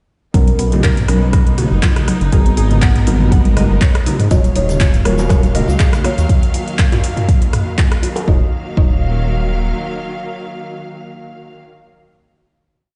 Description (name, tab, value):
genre	afro house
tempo	121 BPM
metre	4/4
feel	swing 54% on 16ths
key	Eb minor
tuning	A4 = 439 Hz
part	rich studio string section	sustained chords	0.3-11.6 s	Eb3 to F5	-27 LUFS	equal	sidechain pumping
part	mallet-like synth pluck	arpeggios	0.3-8.9 s	F#3 to Gb5	-29 LUFS	equal	chorus, sidechain pumping, tape echo
part	deep mellow chord stab	stabs	0.3-12.1 s	Cb4 to Db5	-30 LUFS	equal	chorus, sidechain pumping, tape echo
part	dark detuned saw bass	bass	0.3-9.7 s	Eb1 to Ab2	-18 LUFS	equal	sidechain pumping
part	deep house drum kit	drums	0.3-8.3 s	handclaps, hi-hat, rim click, toms	-24 LUFS	equal	studio reverb
part	electronic kick drum	drums	0.3-8.9 s	none	-15 LUFS	equal	studio reverb
part	congas	percussion	0.3-6.0 s	none	-23 LUFS	equal	none
part	folk marimba with soft mallets	melody	4.3-12.1 s	Bb4 to Eb5	-28 LUFS	equal	tape echo
part	bongos	percussion	4.3-8.3 s	none	-29 LUFS	equal	none
part	tube shaker	percussion	4.3-6.3 s	none	-38 LUFS	equal	none
room	studio reverb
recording	played on a big sound system in a bare room, stone room reverb, nothing above 10.5 kHz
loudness	-14 LUFS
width	mono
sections	0.3-8.3 drop; 8.3-12.2 final chord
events	drop 0.3-8.3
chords	0.3 Bmaj7; 2.3 Abm7; 4.3 Ebm9